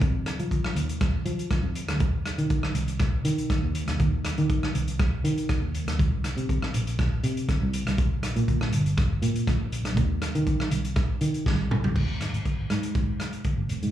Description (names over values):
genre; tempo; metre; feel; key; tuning
calypso; 120 BPM; 4/4; straight; unclear; A4 = 440 Hz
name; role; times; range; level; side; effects
fingered electric bass; bass; 0.0-13.9 s; F1 to F3; -26 LUFS; equal; none
vintage drum kit; drums; 0.0-13.9 s; crash cymbal, hi-hat, kick drum, rim click, snare drum, toms; -27 LUFS; equal; none
room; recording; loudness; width
little or no reverb; live gig heard through the venue's PA, club reverb, small room reverb; -24 LUFS; side -12 dB against mid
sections
0.0-12.0 A section; 12.0-13.9 B section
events
drum fill 11.5-12.0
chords
none